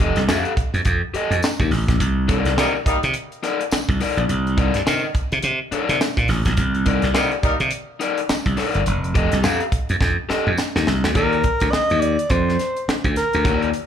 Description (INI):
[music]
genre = funk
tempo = 105 BPM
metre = 4/4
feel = swing 60% on 16ths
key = C dorian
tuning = A4 = 439 Hz
[part]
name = raw garage guitar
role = accompaniment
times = 0.0-13.7 s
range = Eb4 to F5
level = -24 LUFS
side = left 4 dB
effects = overdrive, slapback echo
[part]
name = glassy slap bass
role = bass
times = 0.0-13.7 s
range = F1 to C3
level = -20 LUFS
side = equal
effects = none
[part]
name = crisp fusion drum kit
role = drums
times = 0.0-13.9 s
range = hi-hat, kick drum, snare drum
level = -23 LUFS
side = equal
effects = none
[part]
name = tambourine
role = percussion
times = 0.3-10.7 s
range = none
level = -35 LUFS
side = left 2 dB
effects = none
[part]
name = mellow horn section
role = second line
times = 2.6-3.0, 7.1-7.5 s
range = G3 to Bb4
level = -24 LUFS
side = equal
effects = slapback echo
[part]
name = breathy alto saxophone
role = melody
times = 11.2-13.7 s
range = Bb4 to Eb5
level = -21 LUFS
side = right 1 dB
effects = slapback echo
[sound]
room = small room ambience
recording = live gig heard through the venue's PA, club reverb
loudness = -17 LUFS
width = side -9 dB against mid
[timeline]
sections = 0.0-11.2 A section; 11.2-13.9 B section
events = drum fill 10.0-11.2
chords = 0.0 F9; 2.0 Cm9; 8.9 F9; 11.2 Ebmaj9